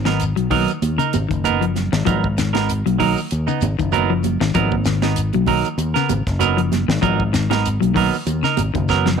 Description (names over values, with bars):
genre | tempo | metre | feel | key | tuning
afrobeat | 97 BPM | 4/4 | swing 55% on 16ths | G# dorian | A4 = 440 Hz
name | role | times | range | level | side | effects
clean electric guitar | arpeggios | 0.0-9.2 s | C#3 to F#3 | -22 LUFS | left 13 dB | none
fingered electric bass | bass | 0.0-9.2 s | F#1 to D#2 | -21 LUFS | left 1 dB | none
semi-hollow electric guitar | stabs | 0.1-9.1 s | F#3 to A#4 | -22 LUFS | right 12 dB | none
tight funk drum kit | drums | 0.1-9.2 s | hi-hat, kick drum, snare drum | -26 LUFS | equal | none
congas | percussion | 0.1-9.2 s | none | -26 LUFS | right 15 dB | none
shekere | percussion | 0.1-9.1 s | none | -30 LUFS | left 5 dB | none
room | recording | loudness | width
light reverb, studio ambience | 1960s-style stereo with parts hard left and right | -16 LUFS | side -6 dB against mid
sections
0.0-9.2 A section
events
drum fill 8.7-9.2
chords
0.0 G#m9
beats
0.20 0.82 1.44 | 2.06 2.68 3.31 3.93 | 4.55 5.17 5.79 6.41 | 7.02 7.64 8.26 8.88